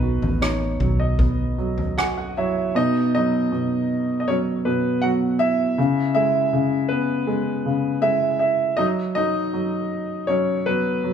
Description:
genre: pop ballad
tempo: 80 BPM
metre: 4/4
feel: straight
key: unclear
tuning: A4 = 440 Hz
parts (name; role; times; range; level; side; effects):
- warm grand piano; melody; 0.0-11.1 s; B3 to F#5; -23 LUFS; equal; none
- warm upright piano; accompaniment; 0.0-11.1 s; B2 to G#5; -22 LUFS; right 1 dB; none
- vintage muted fingered electric bass; bass; 0.0-2.7 s; A1 to B1; -24 LUFS; equal; none
- unplugged drum kit; drums; 0.2-2.2 s; kick drum, rim click, toms; -24 LUFS; equal; none
room: moderate stone room reverb, RT60 1.0 s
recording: band playing live in one room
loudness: -19 LUFS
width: side -8 dB against mid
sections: 0.0-2.8 A section; 2.8-11.1 B section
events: upright piano fill 1.6-2.8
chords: 0.0 B; 5.8 C#m; 8.8 F#5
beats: 0.41 1.19 1.97 | 2.75 3.52 4.27 5.03 | 5.78 6.53 7.28 8.03 | 8.78 9.53 10.28 11.04

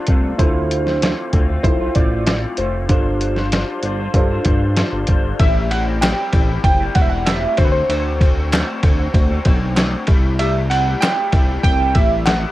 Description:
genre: indie pop, bedroom pop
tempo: 96 BPM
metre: 4/4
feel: straight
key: unclear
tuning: A4 = 445 Hz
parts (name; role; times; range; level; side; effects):
- electric guitar through a small old amp; accompaniment; 0.0-12.5 s; A2 to C5; -26 LUFS; left 4 dB; analog chorus, warbly pitch drift, plate reverb
- warm upright piano; accompaniment; 0.0-5.4 s; D4 to C5; -24 LUFS; right 1 dB; plate reverb
- chorused synth bass; bass; 0.1-12.5 s; E1 to G2; -20 LUFS; equal; none
- lo-fi sampler-style drum kit; drums; 0.1-12.4 s; hi-hat, kick drum, ride cymbal, snare drum; -17 LUFS; equal; cassette tape
- warm analog keys; melody; 0.4-12.5 s; B4 to G5; -22 LUFS; right 2 dB; wide subtle chorus, cassette tape, plate reverb
- group handclap; percussion; 6.0-12.4 s; none; -28 LUFS; right 1 dB; none
room: light reverb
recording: home recording on cassette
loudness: -14 LUFS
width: side -16 dB against mid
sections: 0.0-5.4 A section; 5.4-12.5 B section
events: none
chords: 0.4 Dm7; 2.9 G7sus4; 5.4 Am7; 7.6 D7; 10.1 C6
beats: | 0.39 1.02 1.65 2.27 | 2.90 3.52 4.15 4.77 | 5.40 6.02 6.64 7.27 | 7.89 8.52 9.14 9.77 | 10.39 11.02 11.64 12.27

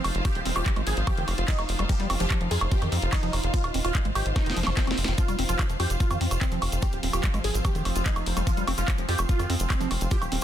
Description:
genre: psychedelic trance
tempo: 146 BPM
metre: 4/4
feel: straight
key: unclear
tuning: A4 = 441 Hz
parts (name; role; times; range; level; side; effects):
- supersaw stab; melody; 0.0-10.3 s; C4 to Ab4; -34 LUFS; right 2 dB; phaser, sidechain pumping, tape echo
- overtone-sweeping drone; sustained chords; 0.0-10.4 s; F3 to Eb4; -36 LUFS; right 2 dB; chorus, built-in reverb, sidechain pumping
- liquid acid bass; riff; 0.0-10.4 s; Eb3 to F4; -34 LUFS; moving between left 8 dB and right 6 dB; phaser, auto-pan, sidechain pumping, tape echo
- tight sequencer bass; bass; 0.0-10.4 s; Eb1 to F2; -28 LUFS; equal; tube saturation
- drum and bass drum kit; drums; 0.0-10.4 s; handclaps, hi-hat, snare drum, woodblock; -31 LUFS; right 1 dB; none
- bright symphonic string section; texture; 0.0-10.4 s; F4 to F5; -36 LUFS; equal; sidechain pumping
- electronic kick drum; drums; 0.2-10.2 s; none; -25 LUFS; equal; none
- cabasa; percussion; 5.2-10.4 s; none; -40 LUFS; right 4 dB; none
room: digital ambience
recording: dense, heavily limited modern master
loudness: -23 LUFS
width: side -11 dB against mid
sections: 0.0-10.4 A section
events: filter sweep on acid bass 0.0-10.4; drum fill 4.4-5.2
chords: 0.0 F5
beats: | 0.25 0.66 1.07 1.48 | 1.89 2.31 2.72 3.13 | 3.54 3.95 4.36 4.77 | 5.18 5.59 6.00 6.41 | 6.83 7.24 7.65 8.06 | 8.47 8.88 9.29 9.70 | 10.11

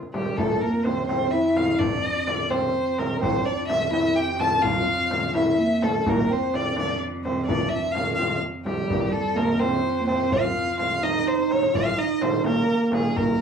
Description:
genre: Persian modal ensemble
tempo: 84 BPM (dotted quarters)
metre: 6/8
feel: straight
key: F dastgah mahur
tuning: A4 = 438 Hz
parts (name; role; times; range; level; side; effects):
- tombak; percussion; 0.0-13.3 s; none; -34 LUFS; left 1 dB; none
- rich violin; melody; 0.1-13.4 s; G4 to A5; -25 LUFS; left 1 dB; none
- overdriven tine electric piano; second line; 0.1-13.4 s; F3 to G4; -25 LUFS; right 2 dB; none
- frame drum; percussion; 0.1-13.3 s; none; -29 LUFS; left 1 dB; none
- bright cello; drone; 0.4-11.8 s; F2; -33 LUFS; right 1 dB; none
room: wet studio ambience, RT60 0.5 s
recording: band playing live in one room, small room ambience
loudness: -21 LUFS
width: side -7 dB against mid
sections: 0.4-11.7 A section; 11.7-13.4 B section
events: drum fill 0.0-0.4, 11.3-11.7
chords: none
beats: | 0.38 1.09 | 1.80 2.51 | 3.22 3.93 | 4.64 5.35 | 6.06 6.77 | 7.48 8.19 | 8.90 9.61 | 10.32 11.03 | 11.74 12.45 | 13.15

